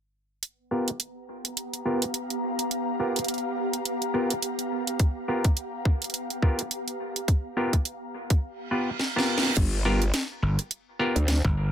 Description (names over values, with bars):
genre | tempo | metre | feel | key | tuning
glitch hop | 105 BPM | 4/4 | swing 58% on 16ths | unclear | A4 = 441 Hz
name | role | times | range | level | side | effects
drum and bass drum kit | drums | 0.4-11.4 s | crash cymbal, hi-hat, rim click, snare drum | -28 LUFS | right 1 dB | overdrive
ethereal airy pad | texture | 1.2-8.4 s | B3 to A#5 | -32 LUFS | equal | ensemble chorus, built-in reverb, sidechain pumping
overdriven clav | stabs | 0.7-11.2 s | B3 to B4 | -28 LUFS | equal | sidechain pumping, low-pass filter, dub echo
electronic kick drum | drums | 5.0-11.5 s | none | -22 LUFS | equal | overdrive
reverse cymbal | sound effects | 8.7-9.6 s | none | -30 LUFS | right 6 dB | none
growl bass | bass | 9.6-11.4 s | G1 to D2 | -24 LUFS | equal | chorus, tube saturation
gritty slap bass | bass | 10.4-11.7 s | G1 | -24 LUFS | equal | overdrive
room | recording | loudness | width
light reverb | none | -25 LUFS | side -9 dB against mid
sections
0.4-9.6 A section; 9.6-11.7 B section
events
reverse cymbal 8.7-9.6; drum fill 9.0-9.6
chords
0.4 G7#9